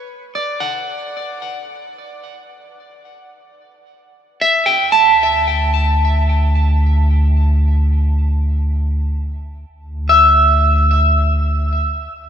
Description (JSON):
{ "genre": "ambient", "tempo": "free time", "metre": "none", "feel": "none", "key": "D major", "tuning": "A4 = 440 Hz", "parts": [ { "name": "electric guitar at the edge of break-up", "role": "arpeggios", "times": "0.0-5.6, 10.1-11.8 s", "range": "B4 to A5", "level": "-15 LUFS", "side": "equal", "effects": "phaser, ping-pong delay, shimmer reverb" }, { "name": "warm sub bass", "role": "bass", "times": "4.8-12.3 s", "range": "D2", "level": "-15 LUFS", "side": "equal", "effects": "none" } ], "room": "moderate huge ambient reverb, RT60 7.7 s", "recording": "none", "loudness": "-13 LUFS", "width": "side -9 dB against mid", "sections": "0.0-4.8 A section; 4.8-12.3 B section", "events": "fade-in on clean electric guitar 0.0-4.8", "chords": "0.0 Bm; 2.4 Em; 4.8 Dsus2", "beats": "free time" }